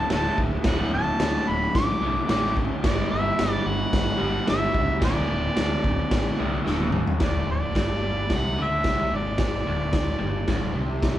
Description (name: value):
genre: garage rock duo or trio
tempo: 110 BPM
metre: 4/4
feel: straight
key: D mixolydian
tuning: A4 = 439 Hz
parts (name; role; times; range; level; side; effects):
- mellow harmonica; melody; 0.0-10.8 s; D5 to D6; -28 LUFS; equal; overdrive
- crunchy overdriven guitar; riff; 0.0-11.2 s; D2 to G3; -28 LUFS; equal; spring reverb
- fuzz fingered electric bass; bass; 0.1-11.2 s; D1 to D2; -30 LUFS; equal; overdrive
- raw garage drum kit; drums; 0.1-11.2 s; crash cymbal, kick drum, snare drum, toms; -25 LUFS; equal; none
room: moderate large studio reverb, RT60 1.3 s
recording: band playing live in one room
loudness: -21 LUFS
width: side -13 dB against mid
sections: 0.0-7.2 A section; 7.2-11.2 B section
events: drum fill 6.7-7.2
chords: 0.0 D5; 2.8 G5; 5.0 D5; 7.2 N.C.